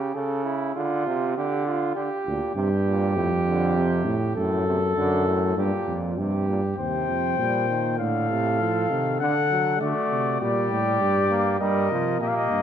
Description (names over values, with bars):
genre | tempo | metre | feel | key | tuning
classical, imitative canzona for brass ensemble | 100 BPM | 4/4 | straight | G minor | A4 = 440 Hz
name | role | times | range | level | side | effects
warm flugelhorn | second line | 0.0-12.6 s | E4 to C5 | -27 LUFS | right 2 dB | none
bright trombone | accompaniment | 0.0-12.6 s | A2 to Bb3 | -28 LUFS | right 2 dB | none
mellow bass trombone | bass | 2.3-12.6 s | D2 to D3 | -25 LUFS | right 1 dB | none
mellow trumpet | melody | 6.8-12.6 s | D5 to G5 | -25 LUFS | left 8 dB | none
room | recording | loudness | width
wet recital hall reverb, RT60 1.8 s | none | -21 LUFS | side -9 dB against mid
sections
0.0-6.8 A section; 6.8-12.6 B section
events
none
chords
0.0 A/C#; 0.8 Dm; 2.0 Gm/D; 3.2 F; 4.4 D/F#; 5.6 Gm; 6.8 Cm/Eb; 8.0 Adim; 9.2 D; 10.4 Gm; 11.6 Eb/G